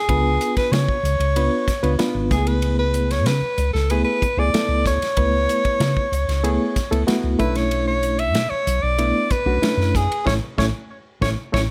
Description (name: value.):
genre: electric jazz fusion.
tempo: 94 BPM.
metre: 4/4.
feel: straight.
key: unclear.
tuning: A4 = 439 Hz.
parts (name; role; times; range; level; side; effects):
warm soprano saxophone; melody; 0.0-11.6 s; G#4 to E5; -25 LUFS; equal; none.
reed electric piano; accompaniment; 0.1-11.6 s; A3 to B4; -26 LUFS; equal; harmonic tremolo.
hollow-body short-scale fingered electric bass; bass; 0.1-11.7 s; G#1 to C#3; -24 LUFS; equal; none.
modern studio drum kit; drums; 0.1-11.7 s; hi-hat, kick drum, ride cymbal, snare drum; -28 LUFS; equal; none.
room: light reverb, small room ambience.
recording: none.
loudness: -20 LUFS.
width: mono.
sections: 0.0-11.7 A section.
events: band accent 10.3-11.7; reed electric piano fill 10.9-11.7.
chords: 0.0 C#7b9; 2.3 F#m11/C# (rootless); 7.4 Bm11; 10.3 A.